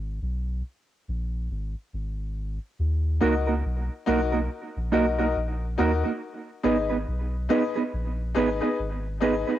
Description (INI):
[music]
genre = reggae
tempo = 70 BPM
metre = 4/4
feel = swing 60% on 16ths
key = Eb minor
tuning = A4 = 440 Hz
[part]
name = soft dub sub bass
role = bass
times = 0.0-9.4 s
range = Ab1 to Eb2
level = -28 LUFS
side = equal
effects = none
[part]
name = mellow electric guitar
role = accompaniment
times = 3.2-9.5 s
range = Bb3 to Cb5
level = -26 LUFS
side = right 5 dB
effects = spring reverb, cassette tape, tape echo
[part]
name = bright concert grand piano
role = stabs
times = 3.2-9.5 s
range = Eb4 to Eb5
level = -28 LUFS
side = left 6 dB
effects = cassette tape, tape echo
[sound]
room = moderate booth ambience, RT60 0.2 s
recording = home recording on cassette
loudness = -24 LUFS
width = side -12 dB against mid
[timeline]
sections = 0.0-2.8 A section; 2.8-9.6 B section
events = break 0.0-2.8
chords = 0.0 Abm; 2.8 Ebm; 6.2 Abm